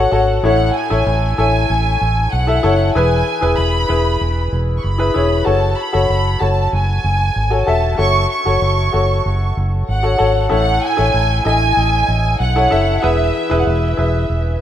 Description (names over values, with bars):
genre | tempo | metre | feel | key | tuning
piano-driven pop | 95 BPM | 4/4 | straight | unclear | A4 = 440 Hz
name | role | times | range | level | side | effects
warm studio violin section | melody | 0.0-14.6 s | E5 to C#6 | -19 LUFS | right 2 dB | none
bright upright piano | accompaniment | 0.0-14.6 s | A2 to E5 | -18 LUFS | left 3 dB | none
vintage muted fingered electric bass | bass | 0.0-14.6 s | E1 to B1 | -17 LUFS | right 1 dB | none
room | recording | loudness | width
light reverb, small room ambience | rough home demo mix | -13 LUFS | side -10 dB against mid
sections
0.0-14.6 A section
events
none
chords
0.4 A; 3.0 E; 5.5 F#m; 10.5 A; 13.0 E